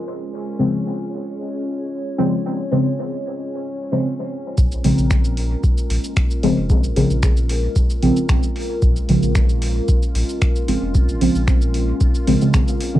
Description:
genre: dub techno.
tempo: 113 BPM.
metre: 4/4.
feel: straight.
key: Bb minor.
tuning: A4 = 439 Hz.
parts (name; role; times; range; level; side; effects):
dark analog pad; sustained chords; 0.0-13.0 s; Ab3 to Db5; -28 LUFS; equal; chorus, phaser, sidechain pumping, cassette tape.
bubbling stepped-filter texture; texture; 0.0-13.0 s; Ab3 to Bb4; -34 LUFS; left 1 dB; chorus, built-in reverb, sidechain pumping, cassette tape.
deep mellow chord stab; stabs; 0.6-13.0 s; Db3 to C4; -19 LUFS; equal; chorus, phaser, sidechain pumping, cassette tape, dub echo.
warm sub bass; bass; 4.6-12.6 s; F1 to Bb1; -21 LUFS; equal; tube saturation, sidechain pumping.
booming analog drum machine; drums; 4.6-12.9 s; finger snaps, hi-hat, shaker; -30 LUFS; equal; cassette tape.
electronic kick drum; drums; 4.6-12.7 s; none; -18 LUFS; equal; cassette tape.
room: light reverb.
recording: home recording on cassette, low-pass filter.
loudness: -16 LUFS.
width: side -14 dB against mid.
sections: 0.0-4.6 A section; 4.6-13.0 B section.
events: filter sweep 0.0-4.6; filter sweep on synth stab 4.6-13.0.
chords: 0.0 Bbm7.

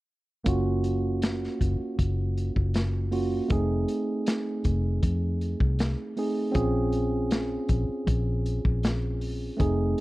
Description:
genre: straight-eighth soul blues.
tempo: 79 BPM.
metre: 4/4.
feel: straight.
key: Bb minor.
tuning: A4 = 440 Hz.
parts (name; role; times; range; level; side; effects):
tine electric piano; accompaniment; 0.4-10.0 s; A3 to G#4; -29 LUFS; right 2 dB; none.
vintage muted fingered electric bass; bass; 0.5-9.9 s; F1 to F2; -27 LUFS; equal; none.
crunchy breakbeat drum kit; drums; 0.5-10.0 s; hi-hat, kick drum, snare drum; -28 LUFS; equal; none.
room: small room reverb.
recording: dry, close 1970s-style studio recording.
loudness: -24 LUFS.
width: side -18 dB against mid.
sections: 0.5-10.0 A section.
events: none.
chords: 0.5 Gbmaj7; 3.5 F7#9; 6.6 Bbm7.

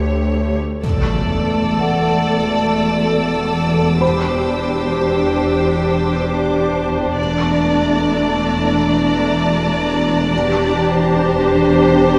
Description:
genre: cinematic, suspense film score.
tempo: free time.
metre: none.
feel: none.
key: unclear.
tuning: A4 = 441 Hz.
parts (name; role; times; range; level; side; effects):
rich symphonic violin section; melody; 0.0-12.2 s; C5 to D5; -25 LUFS; equal; none.
warm symphonic viola section; accompaniment; 0.0-12.2 s; A3 to A4; -20 LUFS; equal; none.
rich symphonic cello section; bass; 0.0-12.2 s; D2 to E2; -24 LUFS; equal; none.
felt-muted upright piano; texture; 0.0-7.2 s; C5 to B5; -29 LUFS; equal; none.
rich studio double bass section; bass; 0.8-12.2 s; E1; -25 LUFS; equal; none.
impact; sound effects; 0.8-4.0 s; none; -24 LUFS; equal; none.
rich symphonic violin section; texture; 0.8-12.2 s; A5 to E6; -32 LUFS; equal; none.
room: wet scoring stage reverb, RT60 1.5 s.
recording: heard from further back in the room.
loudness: -17 LUFS.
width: mono.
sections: 0.8-12.2 A section.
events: impact 0.8-4.0.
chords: 0.0 A7/D; 0.8 Dsus2/E; 4.0 Cadd9/E; 7.2 Dsus2/E; 10.3 Cadd9/E.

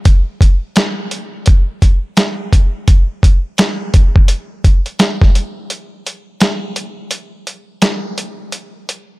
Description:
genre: hip hop.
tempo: 85 BPM.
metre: 4/4.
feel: swing 63% on 16ths.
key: none.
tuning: none.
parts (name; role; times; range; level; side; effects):
dusty soul sampler-style drum kit; drums; 0.1-9.1 s; hi-hat, kick drum, snare drum; -11 LUFS; equal; overdrive.
room: little or no reverb.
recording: none.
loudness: -11 LUFS.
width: side -21 dB against mid.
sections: 0.0-5.7 A section; 5.7-9.2 B section.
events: break 5.7-9.2.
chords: none.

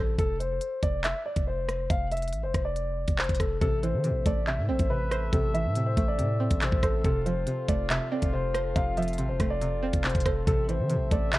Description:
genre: hip hop, drill.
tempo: 140 BPM.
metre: 4/4.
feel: half-time.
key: unclear.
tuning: A4 = 440 Hz.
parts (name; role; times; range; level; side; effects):
dark baby grand piano; melody; 0.0-11.4 s; A4 to F5; -31 LUFS; left 1 dB; none.
string-like resonator pluck; accompaniment; 0.0-0.2, 3.6-11.4 s; C3 to C5; -32 LUFS; right 2 dB; chorus.
long sustained 808-style bass; bass; 0.0-11.4 s; F1 to E3; -30 LUFS; equal; none.
drill drum kit; drums; 0.2-11.4 s; handclaps, hi-hat, kick drum, rim click; -28 LUFS; equal; overdrive.
clear brass ensemble; sustained chords; 3.6-11.4 s; F3 to E5; -37 LUFS; left 2 dB; none.
room: digital ambience.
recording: worn, warbling old tape, cassette tape, warbly pitch drift.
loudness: -25 LUFS.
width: side -18 dB against mid.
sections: 0.0-11.4 A section.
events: break 0.2-3.6.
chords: 0.2 F5; 3.6 Am; 7.0 F; 10.5 Am.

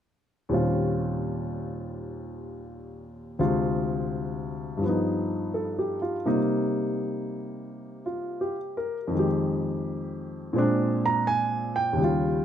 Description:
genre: solo jazz.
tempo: 84 BPM.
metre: 4/4.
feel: swing 68% on 8ths.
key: Eb mixolydian.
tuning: A4 = 441 Hz.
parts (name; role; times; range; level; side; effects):
warm baby grand piano; solo; 0.5-12.4 s; D2 to Bb5; -25 LUFS; equal; none.
room: light reverb.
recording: none.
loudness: -25 LUFS.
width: side -9 dB against mid.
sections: 0.5-12.0 A section.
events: none.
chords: 0.5 Eb13; 3.4 Dm7b5; 4.8 G7b13; 6.3 Cm7; 9.1 Fm9; 10.6 Bb9.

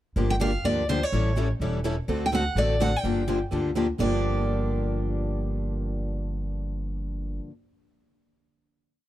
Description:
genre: acoustic string swing (jazz manouche).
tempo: 250 BPM.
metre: 4/4.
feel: swing 56% on 8ths.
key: G minor.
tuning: A4 = 440 Hz.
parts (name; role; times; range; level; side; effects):
picked steel-string acoustic guitar; accompaniment; 0.2-7.5 s; G2 to A4; -30 LUFS; left 4 dB; none.
picked steel-string acoustic guitar; accompaniment; 0.2-7.5 s; G2 to A4; -33 LUFS; right 8 dB; none.
upright bass; bass; 0.2-7.4 s; E1 to D2; -28 LUFS; equal; none.
picked steel-string acoustic guitar; melody; 0.3-7.4 s; C5 to G5; -29 LUFS; equal; none.
room: small room ambience.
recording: dry, close 1970s-style studio recording.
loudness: -24 LUFS.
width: side -14 dB against mid.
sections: 0.2-4.0 A section; 4.0-5.9 final chord.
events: none.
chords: 0.2 Gm7; 1.1 A7; 2.1 D7; 3.0 Gm7.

